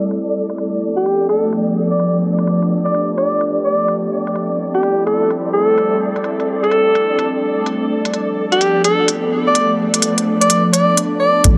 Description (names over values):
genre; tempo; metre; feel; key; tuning
future garage; 127 BPM; 4/4; swing 64% on 16ths; unclear; A4 = 440 Hz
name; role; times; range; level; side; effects
ethereal airy pad; sustained chords; 0.0-11.6 s; F3 to A4; -21 LUFS; equal; ensemble chorus, built-in reverb, phaser, sidechain pumping
flickering grainy texture; texture; 0.0-11.4 s; D5; -28 LUFS; equal; built-in reverb
electronic hi-hat; drums; 0.1-11.6 s; none; -21 LUFS; equal; low-pass filter on hats, low-pass filter on room
warm alto saxophone; melody; 1.0-11.4 s; G4 to D5; -19 LUFS; equal; digital delay
dark detuned saw bass; bass; 11.4-11.6 s; A1; -16 LUFS; equal; tube saturation, sidechain pumping
electronic kick drum; drums; 11.4-11.6 s; none; -14 LUFS; equal; overdrive
room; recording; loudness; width
moderate huge ambient reverb, RT60 7.9 s; low-pass filter; -16 LUFS; mono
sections
0.0-11.4 A section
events
filter sweep on drum 0.0-11.4; filter sweep on ambient pad 0.0-11.4; filter sweep 0.0-11.4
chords
0.1 Bm7b5; 3.9 Am7; 7.7 Bm7b5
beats
| 0.10 0.58 1.05 1.52 | 1.99 2.47 2.94 3.41 | 3.88 4.36 4.83 5.30 | 5.77 6.25 6.72 7.19 | 7.66 8.14 8.61 9.08 | 9.55 10.03 10.50 10.97 | 11.44